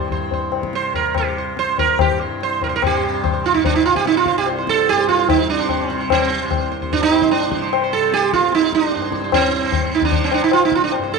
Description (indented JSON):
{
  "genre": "indian classical, Hindustani",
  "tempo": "147 BPM",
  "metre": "4/4",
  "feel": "straight",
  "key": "C raga kafi",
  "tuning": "A4 = 440 Hz",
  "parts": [
    { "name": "sitar", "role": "melody", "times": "0.0-11.2 s", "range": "C4 to C5", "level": "-17 LUFS", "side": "right 7 dB", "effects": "none" },
    { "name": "tanpura", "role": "drone", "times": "0.0-11.2 s", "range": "C2 to C3", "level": "-26 LUFS", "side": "left 1 dB", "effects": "stereo widening" },
    { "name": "tabla", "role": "percussion", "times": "0.1-11.2 s", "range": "none", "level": "-22 LUFS", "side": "left 9 dB", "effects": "none" }
  ],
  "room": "moderate echo chamber reverb, RT60 1.4 s, small room ambience",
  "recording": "1960s-style stereo with parts hard left and right",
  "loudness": "-15 LUFS",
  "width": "side -4 dB against mid",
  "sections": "0.0-2.8 A section; 2.8-11.2 B section",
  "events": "speeding up 0.0-11.2",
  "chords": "none"
}